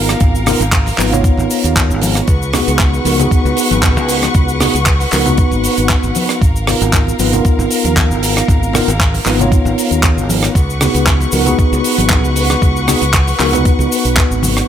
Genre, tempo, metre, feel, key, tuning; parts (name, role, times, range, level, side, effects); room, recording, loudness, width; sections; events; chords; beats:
nu-disco, nu disco; 116 BPM; 4/4; swing 54% on 16ths; A4 = 440 Hz
mellow tine electric piano; accompaniment; 0.0-14.7 s; B3 to C#5; -17 LUFS; equal; medium stereo tremolo, sidechain pumping, digital delay
rich studio string section; sustained chords; 0.0-14.7 s; A#4 to C#6; -21 LUFS; left 1 dB; sidechain pumping
fingered electric bass; bass; 0.0-14.6 s; G#1 to D#2; -17 LUFS; equal
tight funk drum kit; drums; 0.1-14.7 s; cabasa, handclaps, hi-hat, rim click; -17 LUFS; right 1 dB; studio reverb
congas; percussion; 0.1-14.5 s; -23 LUFS; left 2 dB
electronic kick drum; drums; 0.2-14.3 s; -13 LUFS; equal; studio reverb
small room ambience; -11 LUFS; side -9 dB against mid
0.0-14.7 A section
drop 0.0-14.7
0.0 G#m69; 2.3 C#7sus4; 6.4 G#m69; 10.6 C#7sus4
| 0.21 0.73 1.24 1.76 | 2.28 2.79 3.31 3.83 | 4.35 4.86 5.38 5.90 | 6.42 6.93 7.45 7.97 | 8.48 9.00 9.52 10.04 | 10.55 11.07 11.59 12.11 | 12.62 13.14 13.66 14.17